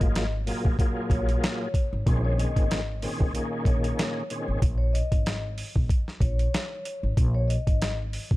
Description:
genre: hip hop, boom-bap hip-hop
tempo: 94 BPM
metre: 4/4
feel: swing 54% on 16ths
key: unclear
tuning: A4 = 440 Hz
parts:
  - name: vibraphone with soft mallets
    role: melody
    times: 0.0-7.9 s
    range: Db5 to Eb5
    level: -36 LUFS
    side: left 3 dB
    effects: high-pass filter, low-pass filter, tape echo
  - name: overdriven tonewheel organ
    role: accompaniment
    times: 0.0-4.6 s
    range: Bb2 to Ab4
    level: -30 LUFS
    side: equal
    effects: chorus vibrato, fast rotary speaker, high-pass filter, low-pass filter
  - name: upright bass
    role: bass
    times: 0.0-8.4 s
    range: Ab1 to Bb1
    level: -27 LUFS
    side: equal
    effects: none
  - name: boom bap sampler-style drum kit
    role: drums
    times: 0.0-8.4 s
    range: hi-hat, kick drum, snare drum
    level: -26 LUFS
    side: equal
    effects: none
room: studio reverb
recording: dark, warm production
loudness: -23 LUFS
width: side -18 dB against mid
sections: 0.0-8.4 A section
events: none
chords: 0.0 Gbmaj9; 2.1 Bbm11; 4.6 Absus24

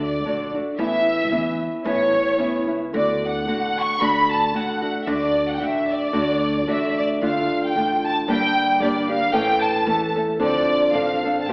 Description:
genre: mexican folk, mariachi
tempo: 113 BPM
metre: 2/4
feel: swing 54% on 8ths, rubato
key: D major, D minor from 7.2 s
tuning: A4 = 440 Hz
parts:
  - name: rich studio violin section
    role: melody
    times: 0.0-11.5 s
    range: C#5 to C#6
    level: -21 LUFS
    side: equal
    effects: none
  - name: nylon-string guitar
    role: accompaniment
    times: 0.0-11.5 s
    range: G2 to A4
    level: -22 LUFS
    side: equal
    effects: none
  - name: upright bass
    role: bass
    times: 0.0-11.5 s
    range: G1 to E2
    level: -36 LUFS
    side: equal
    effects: none
room: wet recital hall reverb, RT60 1.2 s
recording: recorded in a church or concert hall, AM radio sound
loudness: -18 LUFS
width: side -34 dB against mid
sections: 0.0-7.2 A section; 7.2-11.5 B section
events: none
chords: 0.0 D; 0.8 Aadd9; 2.9 D; 7.2 Dm; 8.3 Gm; 9.3 A; 10.4 Dm7

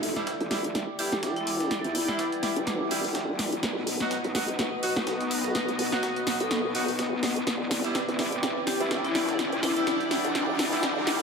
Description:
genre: bass house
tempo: 125 BPM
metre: 4/4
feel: swing 56% on 16ths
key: E minor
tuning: A4 = 441 Hz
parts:
  - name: sweeping resonant pad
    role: sustained chords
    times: 0.0-11.2 s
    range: B3 to D#5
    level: -33 LUFS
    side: equal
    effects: chorus
  - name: vowel-sweep wobble bass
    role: bass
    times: 0.0-11.2 s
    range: E1 to E2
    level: -32 LUFS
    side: equal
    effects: chorus, tube saturation, high-pass filter
  - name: breakbeat sampler-style drum kit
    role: drums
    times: 0.0-11.2 s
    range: hi-hat, snare drum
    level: -41 LUFS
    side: right 1 dB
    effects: none
  - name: house drum kit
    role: drums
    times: 0.0-11.2 s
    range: hi-hat, snare drum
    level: -31 LUFS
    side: equal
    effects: none
  - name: riser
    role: sound effects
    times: 0.0-11.2 s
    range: none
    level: -36 LUFS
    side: equal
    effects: none
  - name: granular cloud pad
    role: texture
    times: 0.0-11.2 s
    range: B3 to F#5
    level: -34 LUFS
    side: left 1 dB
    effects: built-in reverb, wide subtle chorus
  - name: clear horn section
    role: stabs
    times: 0.2-11.2 s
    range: F#3 to F#4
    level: -34 LUFS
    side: right 1 dB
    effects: analog delay
  - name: vibraphone with hard mallets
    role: melody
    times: 1.0-9.8 s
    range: E4 to A4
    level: -34 LUFS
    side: left 2 dB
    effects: analog delay
room: wet plate reverb, RT60 2.0 s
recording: dreamy mix soaked in reverb, high-pass filter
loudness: -25 LUFS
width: side -5 dB against mid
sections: 0.0-11.2 A section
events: build-up 0.0-11.2; drum fill 0.0-11.2; riser 0.0-11.2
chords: 0.0 Em7; 3.6 B; 7.5 Em7

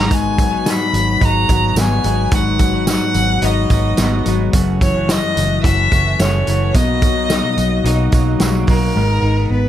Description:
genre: jangly indie pop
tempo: 108 BPM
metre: 4/4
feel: straight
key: unclear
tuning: A4 = 440 Hz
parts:
  - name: rich violin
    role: melody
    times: 0.0-9.7 s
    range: A#4 to B5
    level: -20 LUFS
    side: left 1 dB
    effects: plate reverb
  - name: direct-recorded clean electric guitar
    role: accompaniment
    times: 0.0-9.7 s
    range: F#2 to A#4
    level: -26 LUFS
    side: right 8 dB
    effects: spring reverb, plate reverb
  - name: semi-hollow electric guitar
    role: arpeggios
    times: 0.0-9.7 s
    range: F#2 to F#4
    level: -20 LUFS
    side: left 5 dB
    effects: analog chorus
  - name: vintage muted fingered electric bass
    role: bass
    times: 0.0-9.7 s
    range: F#1 to B1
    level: -18 LUFS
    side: right 1 dB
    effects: none
  - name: loose indie drum kit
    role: drums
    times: 0.1-8.8 s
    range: hi-hat, kick drum, snare drum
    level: -18 LUFS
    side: right 1 dB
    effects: none
  - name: tambourine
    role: percussion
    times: 0.1-8.8 s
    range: none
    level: -32 LUFS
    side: right 7 dB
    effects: none
room: light reverb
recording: none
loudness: -13 LUFS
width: side -11 dB against mid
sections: 0.0-9.0 A section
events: none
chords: 0.0 G#m7; 4.5 F#m7; 6.7 Bmaj7; 9.0 G#madd9

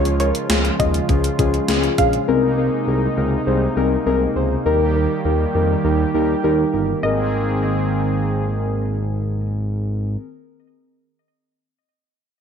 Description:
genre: synth-pop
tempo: 101 BPM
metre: 4/4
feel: straight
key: Ab major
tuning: A4 = 439 Hz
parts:
  - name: warbly dusty pluck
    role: second line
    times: 0.0-2.1, 7.0-8.8 s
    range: Db5 to F5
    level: -25 LUFS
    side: right 2 dB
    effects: chorus, digital delay
  - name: muted felt-like synth keys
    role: accompaniment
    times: 0.0-10.3 s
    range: C4 to C5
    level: -21 LUFS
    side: left 3 dB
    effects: chorus
  - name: brassy analog pad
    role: sustained chords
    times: 0.0-10.2 s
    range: C3 to Ab4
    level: -23 LUFS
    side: right 2 dB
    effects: chorus
  - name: smooth synth bass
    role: bass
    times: 0.0-10.2 s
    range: G1 to F2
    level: -22 LUFS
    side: equal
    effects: none
  - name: gated 80s digital drum machine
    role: drums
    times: 0.1-2.3 s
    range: hi-hat, kick drum, snare drum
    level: -20 LUFS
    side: equal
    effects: gated reverb, gated reverb snare
room: wet plate reverb, RT60 1.7 s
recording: bright 1980s-style digital production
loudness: -17 LUFS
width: side -7 dB against mid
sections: 0.0-7.0 A section; 7.0-9.4 B section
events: none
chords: 0.0 Db; 2.3 Abadd9/C; 4.7 Eb; 7.0 Abadd9

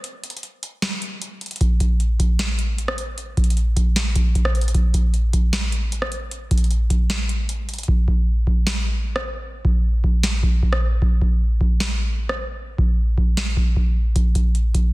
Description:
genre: hip hop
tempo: 153 BPM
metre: 4/4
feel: half-time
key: none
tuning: none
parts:
  - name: booming analog drum machine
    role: drums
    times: 0.0-14.8 s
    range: hi-hat, kick drum, rim click, snare drum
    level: -18 LUFS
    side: equal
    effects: vintage 12-bit sampler grit
room: little or no reverb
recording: dense, heavily limited modern master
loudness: -18 LUFS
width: side -20 dB against mid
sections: 0.0-14.9 A section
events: break 0.0-1.6, 7.1-7.9; hi-hats muted 7.9-14.2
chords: none

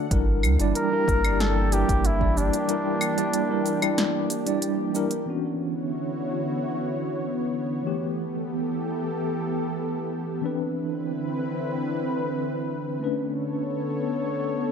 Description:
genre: sunset chillout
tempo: 93 BPM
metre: 4/4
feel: straight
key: unclear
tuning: A4 = 440 Hz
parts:
  - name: tine electric piano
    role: accompaniment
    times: 0.0-14.7 s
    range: E3 to D5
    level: -28 LUFS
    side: moving between left 6 dB and right 6 dB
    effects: fast stereo tremolo, auto-pan, tape echo
  - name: lush unison pad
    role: sustained chords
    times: 0.0-14.7 s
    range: D3 to C#5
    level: -29 LUFS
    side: equal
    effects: chorus
  - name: warm sub bass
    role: bass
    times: 0.1-2.5 s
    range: G1 to D2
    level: -24 LUFS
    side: equal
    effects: none
  - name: deep house drum kit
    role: drums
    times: 0.1-5.2 s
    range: claves, hi-hat, shaker, snare drum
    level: -28 LUFS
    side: equal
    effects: none
  - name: electronic kick drum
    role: drums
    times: 0.1-2.3 s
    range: none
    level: -26 LUFS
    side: equal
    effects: none
  - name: mellow flugelhorn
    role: melody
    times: 0.8-4.6 s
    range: D4 to Bb4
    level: -27 LUFS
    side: equal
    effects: digital delay
room: moderate digital room reverb, RT60 1.4 s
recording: dark, warm production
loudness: -23 LUFS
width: side -7 dB against mid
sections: 0.0-5.3 A section; 5.3-14.7 B section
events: break 2.7-5.3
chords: 0.1 Gm6; 5.3 Dmaj13; 7.9 G69; 10.4 Cmaj9; 13.0 Bm9

